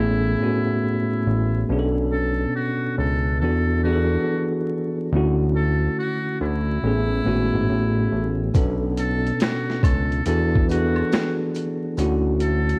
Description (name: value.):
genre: lo-fi hip hop.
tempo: 70 BPM.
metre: 4/4.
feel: swing 66% on 16ths.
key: B dorian.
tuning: A4 = 442 Hz.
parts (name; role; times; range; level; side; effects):
trumpet with metal mute; melody; 0.0-12.8 s; E4 to A4; -32 LUFS; equal; low-pass filter, cassette tape.
bell-like tine electric piano; accompaniment; 0.0-12.8 s; A2 to A4; -25 LUFS; equal; cassette tape, low-pass filter.
fat analog bass; bass; 0.0-12.7 s; G#1 to E2; -25 LUFS; equal; none.
boom bap sampler-style drum kit; drums; 8.5-12.8 s; hi-hat, kick drum, snare drum; -24 LUFS; equal; cassette tape.
maracas and woodblock; percussion; 8.5-12.7 s; none; -44 LUFS; equal; none.
room: digital ambience.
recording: home recording on cassette, vinyl crackle.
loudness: -22 LUFS.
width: mono.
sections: 0.0-12.8 A section.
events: none.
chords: 0.0 Amaj9; 1.7 Bm9; 3.4 E9sus4; 5.1 Dmaj9; 6.8 Amaj9; 8.5 Bm9; 10.3 E9sus4; 12.0 Dmaj9.